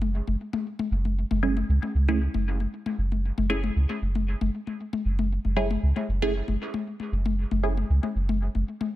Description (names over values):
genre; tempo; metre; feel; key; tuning
dub techno; 116 BPM; 4/4; swing 54% on 16ths; F# minor; A4 = 436 Hz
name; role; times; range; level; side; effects
soft dub sub bass; bass; 0.0-8.6 s; F#1 to C#2; -25 LUFS; equal; tube saturation
electronic toms and congas; percussion; 0.0-8.9 s; none; -31 LUFS; left 5 dB; dub echo
filtered dub chord stab; stabs; 1.4-7.7 s; A3 to G#4; -31 LUFS; right 3 dB; phaser, dub echo
room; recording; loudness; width
digital ambience; none; -24 LUFS; side -15 dB against mid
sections
0.0-9.0 A section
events
none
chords
0.0 F#5